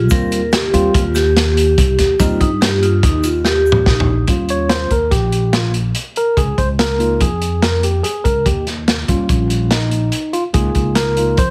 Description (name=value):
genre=progressive instrumental, band music in an uneven meter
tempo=144 BPM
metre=5/4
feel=straight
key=unclear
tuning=A4 = 439 Hz
part: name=vibraphone with medium hard mallets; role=second line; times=0.0-4.3 s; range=Eb4 to Bb4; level=-19 LUFS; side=equal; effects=digital delay
part: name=upright bass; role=bass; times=0.0-11.5 s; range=Bb1 to G2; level=-20 LUFS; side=equal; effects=none
part: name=tine electric piano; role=accompaniment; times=0.1-11.5 s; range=G3 to Db5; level=-20 LUFS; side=equal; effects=none
part: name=crunchy breakbeat drum kit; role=drums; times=0.1-11.5 s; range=hi-hat, kick drum, snare drum, toms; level=-20 LUFS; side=equal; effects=none
part: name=tube shaker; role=percussion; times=0.1-3.8 s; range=none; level=-35 LUFS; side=equal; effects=none
room=light reverb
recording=heavily compressed radio sound, multiband compression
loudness=-15 LUFS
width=mono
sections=0.0-4.3 A section; 4.3-11.5 B section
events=drum fill 3.5-4.3; tine electric piano solo 4.3-11.5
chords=0.1 Eb; 4.3 Eb7; 6.4 Db6; 8.5 Eb7; 10.6 Db6